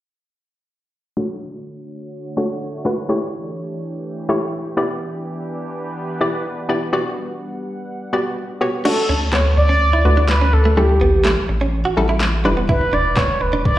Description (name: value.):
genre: dance-pop.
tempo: 125 BPM.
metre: 4/4.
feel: straight.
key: D major.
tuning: A4 = 439 Hz.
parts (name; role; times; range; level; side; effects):
hollow square pluck; accompaniment; 1.2-13.2 s; G3 to D5; -20 LUFS; left 1 dB; chorus, sidechain pumping, low-pass filter, slapback echo.
sweeping resonant pad; sustained chords; 1.2-8.8 s; D3 to F#5; -28 LUFS; right 1 dB; chorus, sidechain pumping, low-pass filter.
mellow horn-like synth lead; melody; 8.9-13.8 s; G4 to D5; -19 LUFS; right 1 dB; chorus, tape echo, slapback echo.
direct-recorded clean electric guitar; riff; 8.9-13.6 s; A3 to F#4; -23 LUFS; right 3 dB; lush chorus, slapback echo.
smooth R&B drum kit; drums; 8.9-13.8 s; crash cymbal, handclaps, kick drum, snare drum; -21 LUFS; equal; slapback echo.
warm sub bass; bass; 9.1-13.8 s; E1 to D2; -17 LUFS; equal; sidechain pumping.
room: light reverb.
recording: live gig heard through the venue's PA, recital hall reverb.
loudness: -16 LUFS.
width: side -14 dB against mid.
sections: 1.2-8.9 A section; 8.9-13.8 B section.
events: filter sweep 1.2-8.9.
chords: 1.2 Dmaj7; 3.1 A7; 4.8 Em7; 6.9 Gmaj7; 8.9 Dmaj7; 10.8 A7; 12.5 Em7.